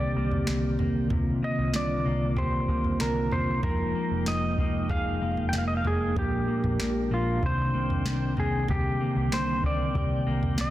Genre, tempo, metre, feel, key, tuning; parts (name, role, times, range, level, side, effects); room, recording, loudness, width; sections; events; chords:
dream pop; 95 BPM; 4/4; straight; C minor; A4 = 440 Hz
clean lap steel guitar; melody; 0.0-10.7 s; F4 to G5; -31 LUFS; equal; tape echo
mellow tonewheel organ; sustained chords; 0.0-10.7 s; D3 to G5; -32 LUFS; right 1 dB; slow rotary speaker
clean electric guitar; arpeggios; 0.0-10.7 s; Bb2 to Ab4; -30 LUFS; left 1 dB; wide subtle chorus, tape echo
vintage muted picked electric bass; bass; 0.0-10.7 s; F1 to C2; -31 LUFS; equal
soft vintage rhythm box; drums; 0.3-10.7 s; kick drum, snare drum, toms; -31 LUFS; equal
moderate plate reverb, RT60 2.3 s; dense, heavily limited modern master; -24 LUFS; side -14 dB against mid
0.0-8.7 A section; 8.7-10.7 A section
0.0 Cm9; 3.6 Fm11; 6.2 Bb7; 7.4 Cm9